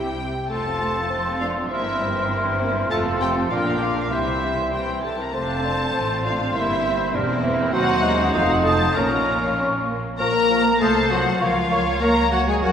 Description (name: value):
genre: quick classical-period movement for symphony orchestra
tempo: 99 BPM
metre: 2/4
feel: straight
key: F major, Bb minor from 7.7 s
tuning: A4 = 440 Hz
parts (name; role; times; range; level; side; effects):
- rich studio violin section; melody; 0.0-12.7 s; E5 to Bb5; -26 LUFS; left 3 dB; none
- mellow clarinet; second line; 0.0-12.7 s; E4 to Bb4; -29 LUFS; equal; none
- rich studio violin section; second line; 0.0-12.7 s; A3 to Bb4; -30 LUFS; left 2 dB; none
- rich studio viola section; accompaniment; 0.0-12.7 s; C3 to Db5; -30 LUFS; right 2 dB; none
- dark French horn section; sustained chords; 0.0-12.7 s; F3 to E4; -28 LUFS; left 2 dB; none
- dark studio cello section; bass; 0.0-12.7 s; C2 to Bb3; -29 LUFS; right 2 dB; none
- rich studio double bass section; bass; 0.0-12.7 s; E1 to Eb2; -30 LUFS; right 2 dB; none
- clear oboe; second line; 0.5-12.7 s; A4 to Db5; -28 LUFS; left 1 dB; none
- large flute ensemble; second line; 0.5-12.7 s; C6 to Eb6; -29 LUFS; equal; none
- dark bassoon; accompaniment; 1.1-12.7 s; F3 to Gb4; -28 LUFS; right 2 dB; none
room: wet concert hall reverb, RT60 2.2 s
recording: recorded in a church or concert hall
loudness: -19 LUFS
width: side -8 dB against mid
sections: 0.5-10.2 A section; 10.2-12.7 B section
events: none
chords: 0.5 F; 1.7 C7/G; 2.9 F; 3.5 Bb; 4.1 C; 5.3 F; 6.5 C7/G; 7.7 Cdim/Eb; 8.3 F7; 9.0 Bbm; 10.2 Bb5; 10.8 F/C; 11.4 Bbm/Db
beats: | 0.50 1.10 | 1.70 2.30 | 2.89 3.49 | 4.11 4.72 | 5.33 5.94 | 6.54 7.14 | 7.74 8.34 | 8.96 9.57 | 10.19 10.81 | 11.41 12.02 | 12.62